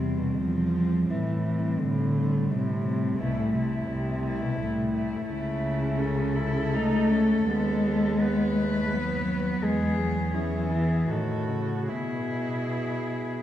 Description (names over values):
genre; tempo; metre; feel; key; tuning
classical, lyrical piece for cello ensemble; 66-88 BPM; 3/4; rubato; E major from 5.3 s; A4 = 440 Hz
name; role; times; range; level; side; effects
warm cello; melody; 0.0-13.4 s; C4 to B4; -33 LUFS; left 4 dB; none
dark cello; second line; 0.0-13.4 s; G3 to F#4; -33 LUFS; right 3 dB; none
dark cello; accompaniment; 0.0-13.4 s; A2 to A3; -26 LUFS; left 1 dB; none
rich cello; bass; 0.0-13.4 s; C2 to B2; -32 LUFS; right 1 dB; none
room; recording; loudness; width
wet recital hall reverb, RT60 1.8 s; heard from further back in the room; -24 LUFS; side -12 dB against mid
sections
0.0-13.4 A section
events
none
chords
0.0 C/E; 1.1 Am7; 3.2 Am/C; 5.3 A/C#; 7.5 B7/D#; 9.6 E; 11.1 A; 11.9 E/B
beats
0.37 | 1.10 1.81 2.51 | 3.20 3.89 4.58 | 5.27 5.98 6.75 | 7.47 8.19 8.91 | 9.62 10.34 11.09 | 11.89 12.73